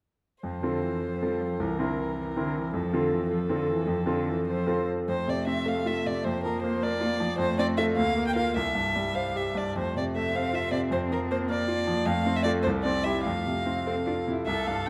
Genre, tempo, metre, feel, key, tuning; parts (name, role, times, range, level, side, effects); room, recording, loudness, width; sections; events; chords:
quick classical-period movement for piano trio; 95-107 BPM (dotted quarters); 6/8; rubato; F major; A4 = 442 Hz
warm violin; melody; 0.4-14.9 s; A4 to G5; -33 LUFS; equal
rich cello; second line; 0.4-14.9 s; D3 to A4; -35 LUFS; equal
bright grand piano; accompaniment; 0.4-14.9 s; C2 to C5; -30 LUFS; equal
wet recital hall reverb, RT60 1.6 s; -28 LUFS; mono
0.4-5.1 A section; 5.1-14.5 B section
0.4 F; 1.6 C7; 2.7 F; 6.2 Bb/F; 7.4 F; 8.0 Bb/D; 8.6 C; 9.8 F; 10.9 Bb/F; 12.1 F; 12.6 C; 13.2 F